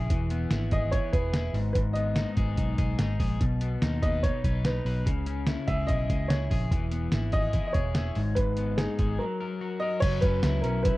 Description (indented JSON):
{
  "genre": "jangly indie pop",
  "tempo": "145 BPM",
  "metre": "4/4",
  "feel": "straight",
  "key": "unclear",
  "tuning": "A4 = 440 Hz",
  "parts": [
    { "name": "electric guitar at the edge of break-up", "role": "arpeggios", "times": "0.0-11.0 s", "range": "G#2 to B4", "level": "-33 LUFS", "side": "left 4 dB", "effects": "vibrato effect, tape echo" },
    { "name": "vintage muted picked electric bass", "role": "bass", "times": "0.0-10.9 s", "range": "E1 to D#2", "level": "-29 LUFS", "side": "equal", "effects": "none" },
    { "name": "lo-fi sampler-style drum kit", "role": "drums", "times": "0.1-10.9 s", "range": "crash cymbal, hi-hat, kick drum, snare drum", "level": "-28 LUFS", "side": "equal", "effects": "overdrive" },
    { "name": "warm upright piano", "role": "melody", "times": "0.7-11.0 s", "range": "G#4 to E5", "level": "-31 LUFS", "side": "right 1 dB", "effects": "none" }
  ],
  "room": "little or no reverb",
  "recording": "dry, close 1970s-style studio recording",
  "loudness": "-25 LUFS",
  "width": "side -18 dB against mid",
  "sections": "0.0-10.0 A section",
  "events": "break 9.2-10.0",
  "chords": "0.1 E; 1.5 G#m; 3.4 B; 5.1 C#m; 6.7 E; 8.2 G#m; 9.2 F#; 10.0 F#7sus4",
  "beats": "| 0.10 0.51 0.92 1.33 | 1.75 2.16 2.57 2.99 | 3.40 3.81 4.23 4.64 | 5.06 5.47 5.88 6.30 | 6.71 7.13 7.54 7.96 | 8.37 8.78 9.20 9.61 | 10.03 10.44 10.85"
}